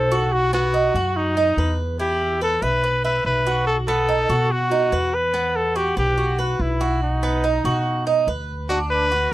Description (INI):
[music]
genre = latin, Cuban son and guajira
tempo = 143 BPM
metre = 4/4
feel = straight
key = E minor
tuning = A4 = 442 Hz
[part]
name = clear trumpet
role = melody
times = 0.0-9.3 s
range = D#4 to B4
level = -21 LUFS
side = left 1 dB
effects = none
[part]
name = Cuban tres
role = arpeggios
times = 0.0-9.3 s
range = B3 to E5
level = -24 LUFS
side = right 4 dB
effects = none
[part]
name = upright bass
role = bass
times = 0.0-9.3 s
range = B1 to B2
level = -24 LUFS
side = equal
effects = none
[sound]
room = light reverb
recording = dry, close 1970s-style studio recording, lossy compression artefacts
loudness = -18 LUFS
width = side -15 dB against mid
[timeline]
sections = 0.0-8.7 A section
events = none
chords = 0.3 B; 2.0 Em; 3.7 B; 5.3 Emadd9; 7.0 B; 8.7 D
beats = | 0.32 0.74 1.16 1.58 | 2.00 2.42 2.83 3.25 | 3.67 4.09 4.51 4.93 | 5.35 5.76 6.18 6.60 | 7.02 7.44 7.86 8.28 | 8.69 9.11